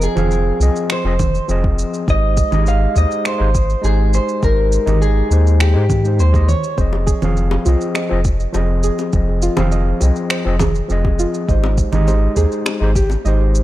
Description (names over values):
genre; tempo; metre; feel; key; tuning
sunset chillout; 102 BPM; 4/4; straight; F minor; A4 = 440 Hz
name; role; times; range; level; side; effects
electric guitar at the edge of break-up; melody; 0.0-6.8 s; G4 to F5; -21 LUFS; equal; digital delay
overdriven tine electric piano; accompaniment; 0.0-13.6 s; F3 to F5; -22 LUFS; moving between left 3 dB and right 3 dB; auto-pan, digital delay
round analog bass; bass; 0.0-13.6 s; F1 to Ab2; -15 LUFS; equal; tube saturation
electronic shaker, congas and finger snaps; drums; 0.0-13.6 s; none; -23 LUFS; right 4 dB; overdrive
electronic kick drum; drums; 1.2-13.1 s; none; -18 LUFS; equal; overdrive
soft round pluck; arpeggios; 6.8-13.5 s; F4 to Eb5; -25 LUFS; right 2 dB; chorus, digital delay
bongos; percussion; 6.9-13.2 s; none; -27 LUFS; left 5 dB; none
room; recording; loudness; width
little or no reverb; dark, warm production; -14 LUFS; side -15 dB against mid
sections
0.0-13.6 A section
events
none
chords
0.0 Fm7; 2.1 Abmaj7; 6.8 Fm7; 11.5 Abmaj7